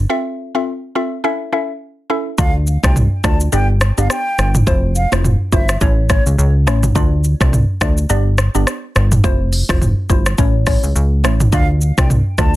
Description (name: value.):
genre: afrobeats.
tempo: 105 BPM.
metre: 4/4.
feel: swing 58% on 16ths.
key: D dorian.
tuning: A4 = 444 Hz.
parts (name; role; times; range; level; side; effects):
plucky analog bass; bass; 0.0-12.6 s; F1 to D2; -15 LUFS; equal; none.
mallet-like synth pluck; accompaniment; 0.1-12.6 s; A3 to E5; -21 LUFS; left 1 dB; chorus, phaser.
mellow hollow silver concert flute; melody; 2.4-6.2, 11.5-12.5 s; C#5 to A5; -24 LUFS; equal; digital delay.
deep house drum kit; drums; 2.4-12.5 s; hi-hat, kick drum, rim click, shaker, toms; -16 LUFS; equal; soft clipping on snare.
room: little or no reverb.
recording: dense, heavily limited modern master.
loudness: -13 LUFS.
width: side -16 dB against mid.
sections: 0.0-2.4 A section; 2.4-12.6 B section.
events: break 0.1-2.4.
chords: 0.1 Fmaj7; 1.2 A; 2.4 Dm; 3.5 G; 4.7 Fmaj7; 5.8 A; 7.0 Dm; 8.1 G; 9.2 Fmaj7; 10.4 A; 11.5 Dm.